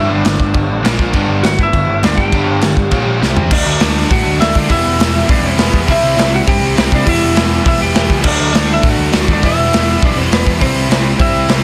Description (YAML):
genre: punk rock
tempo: 203 BPM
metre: 4/4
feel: straight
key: E minor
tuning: A4 = 445 Hz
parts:
  - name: lightly driven lead guitar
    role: melody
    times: 0.0-11.5 s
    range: B3 to G5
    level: -20 LUFS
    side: equal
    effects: tape echo
  - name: cranked stack guitar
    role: riff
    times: 0.0-11.6 s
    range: G2 to F#4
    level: -24 LUFS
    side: equal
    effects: overdrive
  - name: overdriven electric guitar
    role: riff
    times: 0.0-11.6 s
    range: E2 to D4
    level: -24 LUFS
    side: equal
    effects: none
  - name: overdriven electric guitar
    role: riff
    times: 0.0-11.6 s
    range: G2 to G4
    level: -24 LUFS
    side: equal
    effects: none
  - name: overdriven picked electric bass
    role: bass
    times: 0.0-11.6 s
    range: E1 to D3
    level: -21 LUFS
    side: equal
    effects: none
  - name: raw garage drum kit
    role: drums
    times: 0.2-11.6 s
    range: crash cymbal, hi-hat, kick drum, snare drum, toms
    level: -17 LUFS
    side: equal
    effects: none
room: light reverb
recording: dense, heavily limited modern master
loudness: -13 LUFS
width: mono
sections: 0.0-3.5 A section; 3.5-11.6 B section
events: drum fill 3.2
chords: 0.0 G; 0.8 A#5; 1.1 G; 2.9 A#5; 3.2 C5; 3.5 D; 4.7 Em; 5.9 C; 7.1 Em; 8.2 D; 9.4 Em; 10.6 C